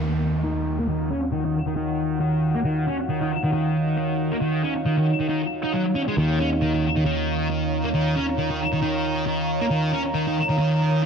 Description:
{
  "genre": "breakbeat",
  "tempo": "136 BPM",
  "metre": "4/4",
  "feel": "swing 57% on 16ths",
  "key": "Eb minor",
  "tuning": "A4 = 441 Hz",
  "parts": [
    { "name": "deep dark ambient pad", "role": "sustained chords", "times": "0.8-11.1 s", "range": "Eb4 to Bb5", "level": "-28 LUFS", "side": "right 1 dB", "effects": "chorus, built-in reverb" },
    { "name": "thick fuzz guitar", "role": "riff", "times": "0.0-11.1 s", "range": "Eb3 to Eb4", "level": "-22 LUFS", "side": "equal", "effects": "distortion, low-pass filter, ping-pong delay" },
    { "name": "picked electric bass", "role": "bass", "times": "0.0-11.1 s", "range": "Eb2", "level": "-31 LUFS", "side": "equal", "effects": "low-pass filter" },
    { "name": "downlifter and riser", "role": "sound effects", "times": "0.0-2.6, 10.1-11.1 s", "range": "none", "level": "-38 LUFS", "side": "left 2 dB", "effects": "none" }
  ],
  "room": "light reverb",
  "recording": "none",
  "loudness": "-21 LUFS",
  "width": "side -6 dB against mid",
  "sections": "0.0-11.1 A section",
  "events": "filter sweep on distorted electric guitar 0.0-11.1",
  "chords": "0.0 Ebm9",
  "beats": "0.00 0.44 | 0.88 1.32 1.76 2.20 | 2.65 3.09 3.53 3.97 | 4.41 4.85 5.29 5.73 | 6.17 6.62 7.06 7.50 | 7.94 8.38 8.82 9.26 | 9.70 10.14 10.59 11.03"
}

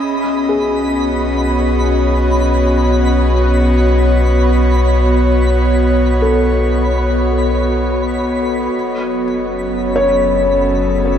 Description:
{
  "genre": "ambient",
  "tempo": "55 BPM",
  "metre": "4/4",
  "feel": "straight",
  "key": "unclear",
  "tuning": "A4 = 440 Hz",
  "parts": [
    { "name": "airy breathy pad", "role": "sustained chords", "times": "0.0-11.2 s", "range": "F#3 to D#5", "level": "-16 LUFS", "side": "equal", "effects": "chorus" },
    { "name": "warm sub bass", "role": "bass", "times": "0.0-11.2 s", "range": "F#1 to B1", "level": "-16 LUFS", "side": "equal", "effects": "none" },
    { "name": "twinkling granular texture", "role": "texture", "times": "0.0-11.2 s", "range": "B5", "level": "-25 LUFS", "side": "right 1 dB", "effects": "built-in reverb" },
    { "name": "felt-muted upright piano", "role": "arpeggios", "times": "0.5-11.2 s", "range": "G#4 to C#5", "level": "-20 LUFS", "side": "left 2 dB", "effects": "ping-pong delay" }
  ],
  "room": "wet huge ambient reverb, RT60 7.1 s",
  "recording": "dark, warm production",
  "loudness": "-12 LUFS",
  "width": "side -9 dB against mid",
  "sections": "0.0-11.2 A section",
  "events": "none",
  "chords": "0.0 B7; 8.7 F#m",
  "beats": "| 0.01 1.11 2.20 3.29 | 4.38 5.47 6.56 7.65 | 8.74 9.83 10.92"
}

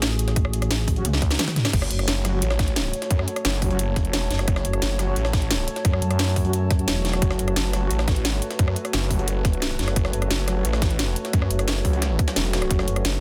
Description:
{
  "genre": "dark technical drum and bass",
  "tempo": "175 BPM",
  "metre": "4/4",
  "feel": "straight",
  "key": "F# minor",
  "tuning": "A4 = 442 Hz",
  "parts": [
    { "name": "dark analog pad", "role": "sustained chords", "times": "0.0-13.2 s", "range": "A3 to C#5", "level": "-34 LUFS", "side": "equal", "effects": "chorus, sidechain pumping" },
    { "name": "growling FM bass", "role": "bass", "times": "0.0-2.1, 4.3-7.5, 9.8-13.0 s", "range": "E1 to F#2", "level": "-26 LUFS", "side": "equal", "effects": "none" },
    { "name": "drum and bass drum kit", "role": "drums", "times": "0.0-13.1 s", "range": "crash cymbal, hi-hat, rim click, snare drum, toms", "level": "-29 LUFS", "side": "equal", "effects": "overdrive" },
    { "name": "jungle sampler-style drum kit", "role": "drums", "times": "0.0-13.2 s", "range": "hi-hat, snare drum", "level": "-37 LUFS", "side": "equal", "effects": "high-pass filter on hats, high-pass filter on snare" },
    { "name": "electronic kick drum", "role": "drums", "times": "0.4-12.8 s", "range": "none", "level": "-24 LUFS", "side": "equal", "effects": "overdrive" },
    { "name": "dark brass ensemble", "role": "stabs", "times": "1.0-13.2 s", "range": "F#3 to F#4", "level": "-33 LUFS", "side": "equal", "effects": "dub echo" },
    { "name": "snarling distorted saw bass", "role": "bass", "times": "1.7-13.2 s", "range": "E1 to F#2", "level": "-27 LUFS", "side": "equal", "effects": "distortion, overdrive" },
    { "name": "warbly tape-like pad", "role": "texture", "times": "1.7-13.2 s", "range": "F#4 to A5", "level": "-38 LUFS", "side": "equal", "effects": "chorus, built-in reverb, sidechain pumping" }
  ],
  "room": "little or no reverb",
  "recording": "dense, heavily limited modern master",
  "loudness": "-23 LUFS",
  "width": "mono",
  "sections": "0.0-1.7 A section; 1.7-13.2 A section",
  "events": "drop 0.0-1.7, 1.7-13.2; drum fill 1.0-1.7; band accent 1.6",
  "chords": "0.0 F#m",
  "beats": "0.02 | 0.36 0.70 1.05 1.39 | 1.73 2.08 2.42 2.76 | 3.10 3.45 3.79 4.13 | 4.48 4.82 5.16 5.50 | 5.85 6.19 6.53 6.88 | 7.22 7.56 7.91 8.25 | 8.59 8.93 9.28 9.62 | 9.96 10.30 10.65 10.99 | 11.33 11.68 12.02 12.36 | 12.71 13.05"
}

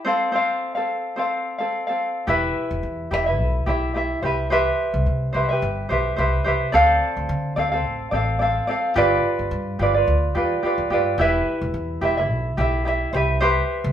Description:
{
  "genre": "acoustic pop",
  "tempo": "108 BPM",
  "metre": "4/4",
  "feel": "swing 55% on 16ths",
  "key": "unclear",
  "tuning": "A4 = 440 Hz",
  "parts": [
    { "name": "tenor ukulele", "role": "accompaniment", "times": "0.0-13.9 s", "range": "C4 to F5", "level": "-20 LUFS", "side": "equal", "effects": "none" },
    { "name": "upright bass", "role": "bass", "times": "2.3-13.9 s", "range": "E1 to D3", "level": "-24 LUFS", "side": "equal", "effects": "none" }
  ],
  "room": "wet large studio reverb, RT60 0.9 s",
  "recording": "band playing live in one room",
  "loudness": "-19 LUFS",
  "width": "side -10 dB against mid",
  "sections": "0.0-2.3 A section; 2.3-13.9 B section",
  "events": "none",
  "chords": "0.1 F; 2.3 Em; 4.2 Cmaj7; 6.7 Dm7; 9.0 G7; 11.2 Em; 13.1 Cmaj7",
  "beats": "| 0.05 0.61 1.17 1.72 | 2.28 2.84 3.39 3.95 | 4.51 5.07 5.62 6.18 | 6.74 7.29 7.85 8.40 | 8.96 9.52 10.07 10.63 | 11.19 11.74 12.30 12.86 | 13.41"
}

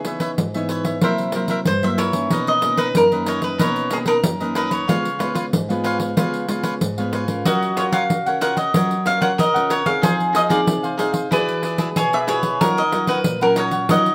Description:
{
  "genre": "samba and choro",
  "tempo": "93 BPM",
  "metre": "4/4",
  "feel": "straight",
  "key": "unclear",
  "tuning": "A4 = 445 Hz",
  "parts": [
    { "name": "cavaquinho", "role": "melody", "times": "0.0-14.1 s", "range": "Ab4 to Gb5", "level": "-23 LUFS", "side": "equal", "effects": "none" },
    { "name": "cavaquinho", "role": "accompaniment", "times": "0.0-14.1 s", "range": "D#4 to Gb5", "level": "-27 LUFS", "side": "equal", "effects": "none" },
    { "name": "nylon-string guitar", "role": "accompaniment", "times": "0.0-14.1 s", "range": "F#2 to Bb4", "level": "-27 LUFS", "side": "equal", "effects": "none" },
    { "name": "pandeiro", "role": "percussion", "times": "0.0-14.1 s", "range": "none", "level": "-25 LUFS", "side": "equal", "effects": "none" },
    { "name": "bowl-back mandolin", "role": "second line", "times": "7.5-14.1 s", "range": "Gb4 to B4", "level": "-26 LUFS", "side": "equal", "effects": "none" }
  ],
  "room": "moderate studio reverb, RT60 0.8 s",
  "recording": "none",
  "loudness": "-20 LUFS",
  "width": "mono",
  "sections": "0.0-14.1 A section",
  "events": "none",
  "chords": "0.0 Dbm9; 1.0 C7#11; 2.3 Bmaj9; 4.9 Db7; 7.5 Gbmaj7; 10.0 Fm7; 11.3 E9; 12.6 Ebm9",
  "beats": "0.38 1.02 1.67 | 2.31 2.95 3.60 4.24 | 4.88 5.53 6.17 6.81 | 7.46 8.10 8.74 9.39 | 10.03 10.68 11.32 11.97 | 12.61 13.26 13.90"
}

